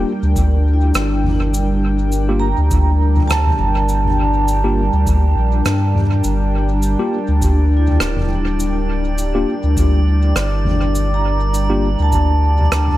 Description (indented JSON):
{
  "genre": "ambient dub",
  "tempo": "102 BPM",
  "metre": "4/4",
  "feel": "swing 55% on 16ths",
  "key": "G dorian",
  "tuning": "A4 = 440 Hz",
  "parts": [
    { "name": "warm analog pad", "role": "sustained chords", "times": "0.0-13.0 s", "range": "G3 to G5", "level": "-23 LUFS", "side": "left 1 dB", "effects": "chorus" },
    { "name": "vibraphone with soft mallets", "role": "arpeggios", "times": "0.0-13.0 s", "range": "D4 to Bb5", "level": "-23 LUFS", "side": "right 3 dB", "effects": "dub echo" },
    { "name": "mellow tine electric piano", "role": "stabs", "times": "0.0-11.9 s", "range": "Bb3 to G4", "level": "-25 LUFS", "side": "left 2 dB", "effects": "medium stereo tremolo, dub echo" },
    { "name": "warm sub bass", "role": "bass", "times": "0.0-13.0 s", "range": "D1 to G2", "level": "-16 LUFS", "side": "equal", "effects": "none" },
    { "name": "electronic kick drum", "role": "drums", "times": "0.4-12.3 s", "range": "none", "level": "-22 LUFS", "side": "equal", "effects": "none" },
    { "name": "soft-mallet drum kit", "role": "drums", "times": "0.4-13.0 s", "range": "cabasa, rim click, toms", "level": "-23 LUFS", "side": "left 1 dB", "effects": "dub echo" },
    { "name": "drifting glass-harmonics texture", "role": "texture", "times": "7.1-13.0 s", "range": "D5", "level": "-28 LUFS", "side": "right 2 dB", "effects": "chorus, built-in reverb" }
  ],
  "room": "studio ambience",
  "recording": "none",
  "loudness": "-14 LUFS",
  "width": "side -15 dB against mid",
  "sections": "0.0-13.0 A section",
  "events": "none",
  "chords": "0.0 Gm",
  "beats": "0.36 0.95 | 1.54 2.13 2.71 3.30 | 3.89 4.48 5.07 5.66 | 6.24 6.83 7.42 8.01 | 8.60 9.19 9.77 10.36 | 10.95 11.54 12.13 12.71"
}